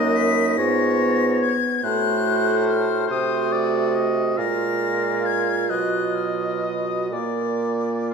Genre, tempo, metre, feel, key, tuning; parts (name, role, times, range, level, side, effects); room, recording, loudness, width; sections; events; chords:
classical, slow romantic movement for wind quintet; 41-49 BPM (dotted quarters); 6/8; rubato; A4 = 440 Hz
silver concert flute; melody; 0.0-8.1 s; D6 to Cb7; -26 LUFS; left 8 dB
clear oboe; second line; 0.0-8.1 s; C5 to F5; -28 LUFS; left 4 dB
mellow French horn; accompaniment; 0.0-8.1 s; F#3 to Cb4; -26 LUFS; equal
warm clarinet; accompaniment; 0.0-8.1 s; Eb4 to F#4; -26 LUFS; right 12 dB
mellow bassoon; bass; 0.0-8.1 s; Gb2 to C3; -24 LUFS; equal
wet scoring stage reverb, RT60 1.9 s; recorded in a church or concert hall; -19 LUFS; side -5 dB against mid
0.0-8.1 A section
0.0 Ebm/Gb; 0.6 Fdim/Ab; 1.8 Adim7; 4.4 Bb5; 5.7 B; 7.1 Bb